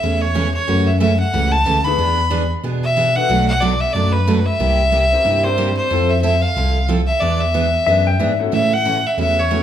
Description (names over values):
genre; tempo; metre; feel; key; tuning
country, western swing; 184 BPM; 4/4; swing 61% on 8ths; A major; A4 = 442 Hz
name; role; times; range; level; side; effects
clear fiddle; melody; 0.0-9.6 s; B4 to B5; -18 LUFS; left 1 dB; none
picked steel-string acoustic guitar; accompaniment; 0.0-9.6 s; B2 to A4; -22 LUFS; right 4 dB; none
tine electric piano; bass; 0.0-9.6 s; B1 to B2; -19 LUFS; equal; none
bright upright piano; accompaniment; 1.9-6.1, 8.4-9.6 s; A3 to D5; -26 LUFS; left 6 dB; none
clean lap steel guitar; second line; 7.9-8.5 s; E5 to G5; -19 LUFS; left 7 dB; none
room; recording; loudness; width
moderate large studio reverb, RT60 1.1 s; band playing live in one room; -14 LUFS; side -10 dB against mid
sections
0.0-8.5 A section; 8.5-9.6 B section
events
none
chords
0.0 Amaj7; 0.7 F#m7; 2.0 E7; 3.3 Bm7; 4.6 C7; 5.9 Fmaj7; 7.2 E7; 8.5 A6